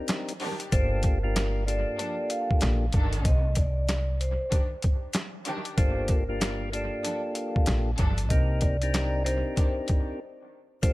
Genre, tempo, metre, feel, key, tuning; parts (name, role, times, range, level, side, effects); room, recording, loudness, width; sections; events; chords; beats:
hip hop, boom-bap hip-hop; 95 BPM; 4/4; swing 62% on 16ths; A4 = 440 Hz
percussive tonewheel organ; accompaniment; 0.0-10.9 s; Bb3 to Bb4; -33 LUFS; left 1 dB; slow rotary speaker, cassette tape, high-pass filter, low-pass filter
boom bap sampler-style drum kit; drums; 0.1-10.9 s; hi-hat, kick drum, snare drum; -26 LUFS; equal
warm studio string section; stabs; 0.4-9.7 s; Eb3 to A4; -37 LUFS; right 1 dB; high-pass filter, low-pass filter, analog delay
vibraphone with soft mallets; melody; 0.7-10.9 s; Bb4 to F5; -34 LUFS; right 1 dB; high-pass filter, low-pass filter, analog delay
upright bass; bass; 0.7-10.9 s; G1 to C2; -28 LUFS; equal
studio reverb; echo-heavy mix; -24 LUFS; side -19 dB against mid
0.0-10.8 A section
break 10.2-10.8
0.0 Cm9; 0.7 Gm9; 3.2 Cmadd9; 5.8 Gm9; 8.3 Cm9
0.09 | 0.72 1.35 1.99 2.62 | 3.25 3.88 4.51 5.14 | 5.78 6.41 7.04 7.67 | 8.30 8.93 9.57 10.20 | 10.83